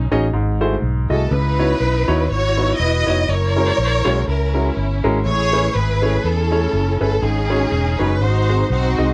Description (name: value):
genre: uptempo gospel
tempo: 122 BPM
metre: 4/4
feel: swing 57% on 8ths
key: C# minor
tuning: A4 = 440 Hz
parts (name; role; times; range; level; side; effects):
- warm studio string section; melody; 0.0-9.1 s; B#3 to D#5; -22 LUFS; equal; none
- warm baby grand piano; accompaniment; 0.0-9.1 s; G#2 to D#5; -24 LUFS; equal; none
- fingered electric bass; bass; 0.0-9.1 s; E1 to E2; -22 LUFS; equal; none
room: light reverb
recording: dark, warm production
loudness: -18 LUFS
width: mono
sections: 0.0-9.1 A section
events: none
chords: 0.3 G#7b9b13; 1.3 C#m11; 3.3 F#9; 5.3 Amaj9; 7.2 G#7sus4; 8.2 G#7